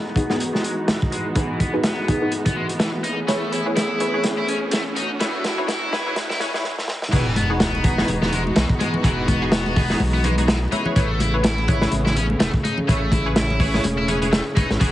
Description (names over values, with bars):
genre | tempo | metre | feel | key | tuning
breakbeat, breaks | 125 BPM | 4/4 | swing 57% on 16ths | unclear | A4 = 442 Hz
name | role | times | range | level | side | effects
rich studio string section | sustained chords | 0.0-14.9 s | C#3 to G#4 | -26 LUFS | equal | sidechain pumping, low-pass filter
tight distorted guitar | riff | 0.0-14.9 s | E3 to E4 | -27 LUFS | left 1 dB | distortion, vintage 12-bit sampler grit, low-pass filter, dub echo
riser and sub drop | sound effects | 2.6-9.0 s | none | -32 LUFS | equal | none
band-passed chord stab | stabs | 0.2-14.9 s | B3 to C#5 | -27 LUFS | left 1 dB | wide subtle chorus, dub echo
crunchy breakbeat drum kit | drums | 0.2-14.9 s | crash cymbal, hi-hat, kick drum, snare drum | -22 LUFS | equal | none
saturated sub bass | bass | 7.1-14.9 s | E1 to B1 | -24 LUFS | equal | none
congas | percussion | 7.4-14.8 s | none | -28 LUFS | left 2 dB | none
room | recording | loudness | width
light reverb, small room ambience | heavily compressed radio sound, vinyl crackle, high-pass filter, nothing above 10.3 kHz | -18 LUFS | side -14 dB against mid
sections
0.0-7.1 A section; 7.1-14.9 B section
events
build-up 0.0-7.1; filter sweep on distorted electric guitar 0.0-7.1; filter sweep on synth stab 0.0-7.1; filter sweep on string section 0.0-7.1; filter sweep 0.0-7.1; drum fill 3.3-6.6, 6.6-7.1; stop 6.6-7.1; drop 7.1-14.9; impact 7.1-9.0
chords
0.0 Emaj9; 3.0 Amaj9; 7.1 Emaj9; 10.7 Amaj9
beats
0.40 0.88 | 1.36 1.84 2.32 2.80 | 3.28 3.76 4.24 4.72 | 5.20 5.68 6.16 6.64 | 7.12 7.60 8.08 8.56 | 9.04 9.52 10.00 10.48 | 10.96 11.44 11.92 12.40 | 12.88 13.36 13.84 14.32 | 14.80